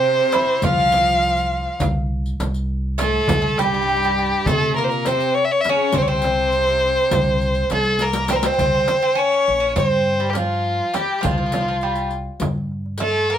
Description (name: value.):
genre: Turkish makam ensemble.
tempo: 204 BPM (eighths).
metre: 9/8.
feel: straight.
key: C makam hicaz.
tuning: A4 = 441 Hz.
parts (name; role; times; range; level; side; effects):
rich violin; melody; 0.0-13.4 s; F4 to F5; -19 LUFS; left 1 dB; none.
Greek bouzouki; second line; 0.0-13.4 s; F3 to F4; -25 LUFS; right 3 dB; none.
clear studio cello section; second line; 0.0-8.0 s; G2 to F3; -28 LUFS; equal; none.
upright bass; bass; 0.0-13.4 s; Bb1 to C3; -25 LUFS; right 1 dB; none.
darbuka; percussion; 0.3-13.1 s; none; -27 LUFS; left 2 dB; none.
riq; percussion; 0.3-13.1 s; none; -30 LUFS; left 4 dB; none.
frame drum; percussion; 0.4-13.1 s; none; -27 LUFS; right 3 dB; none.
room: light reverb.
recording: none.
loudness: -17 LUFS.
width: side -10 dB against mid.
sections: 0.0-8.6 A section; 8.6-13.4 B section.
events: drum fill 8.0-8.6.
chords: none.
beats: 0.04 0.33 | 0.63 0.93 1.22 1.52 1.81 2.11 2.40 2.70 2.99 | 3.29 3.58 3.88 4.17 4.47 4.76 5.06 5.35 5.65 | 5.94 6.24 6.53 6.82 7.12 7.41 7.71 8.00 8.29 | 8.59 8.88 9.18 9.47 9.77 10.06 10.35 10.65 10.94 | 11.24 11.53 11.82 12.12 12.41 12.71 13.00 13.30.